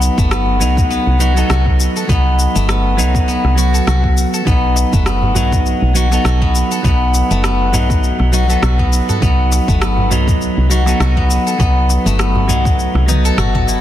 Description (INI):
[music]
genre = organic downtempo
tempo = 101 BPM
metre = 4/4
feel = swing 56% on 16ths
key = unclear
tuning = A4 = 440 Hz
[part]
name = clean electric guitar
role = accompaniment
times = 0.0-13.8 s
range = F#3 to D#4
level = -20 LUFS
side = right 5 dB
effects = sidechain pumping, tape echo, shimmer reverb
[part]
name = steel-string zither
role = arpeggios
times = 0.0-13.8 s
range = F#3 to A4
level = -18 LUFS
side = left 4 dB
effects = tape echo, shimmer reverb
[part]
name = woody FM bass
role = bass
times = 0.0-13.8 s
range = F#1 to C2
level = -15 LUFS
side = equal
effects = sidechain pumping
[part]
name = deep house drum kit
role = drums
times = 0.0-13.8 s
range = cabasa, rim click, toms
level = -23 LUFS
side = left 2 dB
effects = none
[part]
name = electronic kick drum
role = drums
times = 0.2-13.7 s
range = none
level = -16 LUFS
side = equal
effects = none
[part]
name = darbuka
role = percussion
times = 4.5-13.8 s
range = none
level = -23 LUFS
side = right 1 dB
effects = none
[sound]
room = light reverb, digital ambience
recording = dense, heavily limited modern master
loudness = -12 LUFS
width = side -12 dB against mid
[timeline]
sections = 0.0-13.8 A section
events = drum fill 13.1-13.8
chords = 0.0 C5; 4.5 B7; 9.2 Cmaj7(no3)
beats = 0.31 0.90 1.50 | 2.09 2.69 3.28 3.88 | 4.47 5.06 5.66 6.25 | 6.84 7.44 8.03 8.63 | 9.22 9.81 10.41 11.00 | 11.60 12.19 12.79 13.38